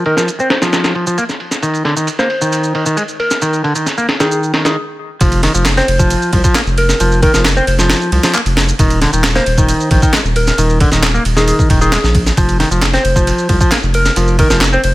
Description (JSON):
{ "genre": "breakbeat, breaks", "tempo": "134 BPM", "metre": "4/4", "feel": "straight", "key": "F dorian", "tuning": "A4 = 442 Hz", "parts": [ { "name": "semi-hollow electric guitar", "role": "riff", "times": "0.0-14.8 s", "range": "D3 to C4", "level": "-16 LUFS", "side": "equal", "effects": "tube saturation, low-pass filter, ping-pong delay" }, { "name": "soft struck synth lead", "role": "melody", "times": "0.1-14.9 s", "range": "Ab4 to C5", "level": "-19 LUFS", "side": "equal", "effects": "chorus, AM radio sound, ping-pong delay" }, { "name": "breakbeat sampler-style drum kit", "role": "drums", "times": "0.1-14.9 s", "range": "kick drum, ride cymbal, snare drum", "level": "-15 LUFS", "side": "equal", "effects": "low-pass filter on snare, small room ambience, low-pass filter on cymbals, low-pass filter on kick" }, { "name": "garage drum kit", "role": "drums", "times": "0.2-14.9 s", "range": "handclaps, ride cymbal, shaker", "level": "-21 LUFS", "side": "right 1 dB", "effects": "small room ambience" }, { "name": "saturated sub bass", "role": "bass", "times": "5.2-14.9 s", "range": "Eb1 to C2", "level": "-15 LUFS", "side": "equal", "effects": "none" } ], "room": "little or no reverb", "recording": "none", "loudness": "-11 LUFS", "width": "side -18 dB against mid", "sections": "0.0-5.2 A section; 5.2-14.9 B section", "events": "stop 4.8-5.2; drop 5.2-14.9", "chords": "0.0 F5; 1.6 Eb5; 5.2 F5; 8.8 Eb5; 12.4 F5" }